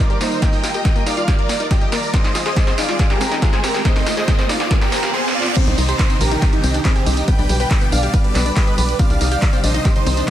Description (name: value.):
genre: uplifting trance.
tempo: 140 BPM.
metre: 4/4.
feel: straight.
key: C minor.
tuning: A4 = 440 Hz.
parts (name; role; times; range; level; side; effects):
big supersaw lead; melody; 0.0-10.3 s; C4 to G5; -22 LUFS; right 1 dB; phaser, sidechain pumping, tape echo.
rich studio string section; sustained chords; 0.0-10.3 s; B2 to Bb4; -27 LUFS; right 1 dB; sidechain pumping.
analog pluck; arpeggios; 0.0-10.3 s; Bb3 to F5; -26 LUFS; left 4 dB; chorus, sidechain pumping, dub echo.
riser, reverse cymbal and downlifter; sound effects; 1.5-9.0 s; none; -28 LUFS; right 2 dB; none.
punchy analog drum machine; drums; 0.1-10.3 s; crash cymbal, handclaps, hi-hat, ride cymbal, snare drum, tambourine; -24 LUFS; equal; high-pass filter on snare, sidechain pumping on hats, high-pass filter on hats, sidechain pumping on perc, high-pass filter on perc, sidechain pumping on cymbals, high-pass filter on cymbals.
electronic kick drum; drums; 0.4-10.3 s; none; -16 LUFS; equal; none.
tight sequencer bass; bass; 5.7-10.2 s; Bb1 to C2; -18 LUFS; equal; sidechain pumping.
room: light reverb.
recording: none.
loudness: -14 LUFS.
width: side -12 dB against mid.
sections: 0.0-5.6 A section; 5.6-10.3 B section.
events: build-up 0.0-5.6; drum fill 0.0-5.1, 5.1-5.6; riser 1.5-5.6; reverse cymbal 4.7-5.6; drop 5.6-10.3.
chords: 0.0 Ebadd9; 2.1 Fm7; 5.6 Cmadd9; 7.3 G/B; 9.0 Cmadd9.